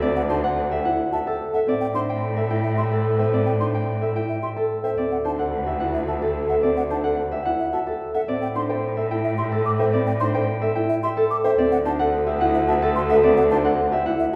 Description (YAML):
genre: classical, minimalist pattern music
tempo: 109 BPM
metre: 3/4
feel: straight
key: A dorian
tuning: A4 = 440 Hz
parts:
  - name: concert harp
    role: melody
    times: 0.0-14.4 s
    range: A4 to G5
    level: -25 LUFS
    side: equal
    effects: none
  - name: dark concert grand piano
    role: arpeggios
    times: 0.0-14.4 s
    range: C4 to C5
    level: -28 LUFS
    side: equal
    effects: none
  - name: warm cello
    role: bass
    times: 0.0-14.4 s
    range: D2 to A2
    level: -28 LUFS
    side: equal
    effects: none
  - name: mellow hollow concert flute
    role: arpeggios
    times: 0.2-14.4 s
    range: E5 to D6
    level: -32 LUFS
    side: equal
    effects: none
room: wet recital hall reverb, RT60 1.4 s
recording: recorded in a church or concert hall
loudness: -22 LUFS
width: mono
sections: 0.0-14.4 A section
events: none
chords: 0.0 D9sus4; 1.7 Am7; 5.0 D9sus4; 8.3 Am7; 11.6 D9sus4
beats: | 0.02 0.57 1.12 | 1.68 2.23 2.78 | 3.33 3.88 4.43 | 4.98 5.53 6.08 | 6.63 7.18 7.73 | 8.28 8.83 9.38 | 9.93 10.48 11.03 | 11.58 12.13 12.68 | 13.23 13.79 14.34